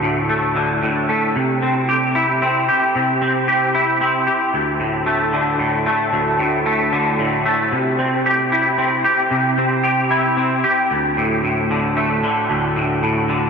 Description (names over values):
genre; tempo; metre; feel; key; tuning
rock; 113 BPM; 3/4; straight; unclear; A4 = 439 Hz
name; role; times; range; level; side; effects
twangy electric guitar; solo; 0.0-13.5 s; D2 to G4; -15 LUFS; equal; ensemble chorus, ping-pong delay
room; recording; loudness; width
wet huge ambient reverb, RT60 9.1 s; dreamy mix soaked in reverb; -15 LUFS; side -5 dB against mid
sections
0.0-10.9 A section; 10.9-13.5 B section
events
build-up 0.0-10.9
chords
0.0 D5; 1.4 C; 4.5 D5; 7.7 C; 10.9 D5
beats
0.30 0.83 | 1.36 1.89 2.42 | 2.95 3.48 4.01 | 4.54 5.07 5.60 | 6.13 6.66 7.19 | 7.72 8.25 8.78 | 9.31 9.84 10.38 | 10.90 11.44 11.97 | 12.50 13.03